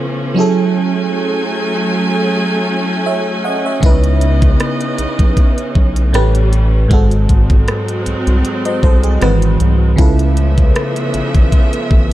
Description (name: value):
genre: contemporary R&B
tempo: 78 BPM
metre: 4/4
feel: swing 54% on 16ths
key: C# minor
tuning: A4 = 435 Hz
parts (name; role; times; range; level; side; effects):
- FM electric piano; accompaniment; 0.0-12.1 s; G#2 to F#5; -17 LUFS; right 1 dB; chorus, phaser
- clear studio string section; sustained chords; 0.0-12.1 s; C#3 to G#5; -20 LUFS; equal; none
- rubbery square bass; bass; 3.8-12.1 s; G#1 to C#2; -14 LUFS; equal; none
- trap drum kit; drums; 3.8-12.1 s; hi-hat, kick drum, rim click; -12 LUFS; equal; none
room: little or no reverb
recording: dark, warm production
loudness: -11 LUFS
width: side -14 dB against mid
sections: 0.0-12.1 A section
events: none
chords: 0.4 F#m9; 3.8 C#m9; 6.1 A9; 6.9 G#7b9; 9.2 G#7alt; 10.0 C#7alt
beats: | 0.75 1.52 2.29 3.06 | 3.83 4.60 5.37 6.14 | 6.91 7.68 8.45 9.21 | 9.98 10.75 11.52